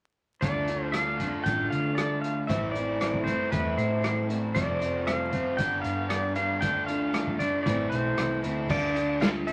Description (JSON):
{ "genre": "folk rock and heartland rock", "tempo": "116 BPM", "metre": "4/4", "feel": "straight", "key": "D dorian", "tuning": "A4 = 435 Hz", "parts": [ { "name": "pedal steel guitar", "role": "melody", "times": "0.4-9.5 s", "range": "B4 to G5", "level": "-32 LUFS", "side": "equal", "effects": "none" }, { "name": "picked steel-string acoustic guitar", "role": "accompaniment", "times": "0.4-9.5 s", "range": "A2 to C5", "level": "-35 LUFS", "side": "equal", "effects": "none" }, { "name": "raw garage guitar", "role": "riff", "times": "0.4-9.5 s", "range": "F2 to A4", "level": "-35 LUFS", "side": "equal", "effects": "overdrive" }, { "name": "hollow-body short-scale fingered electric bass", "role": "bass", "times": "0.4-9.5 s", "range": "F1 to D3", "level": "-36 LUFS", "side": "equal", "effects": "none" }, { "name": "vintage drum kit", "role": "drums", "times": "0.4-9.5 s", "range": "crash cymbal, hi-hat, kick drum, rim click, snare drum", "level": "-34 LUFS", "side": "equal", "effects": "none" } ], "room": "moderate studio ambience, RT60 0.5 s", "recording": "vinyl crackle", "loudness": "-28 LUFS", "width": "mono", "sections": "0.4-8.7 A section", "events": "none", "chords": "0.4 Dm; 2.5 Amadd9; 4.6 F; 5.6 G; 6.6 Dm; 7.7 Amadd9; 8.7 Dm" }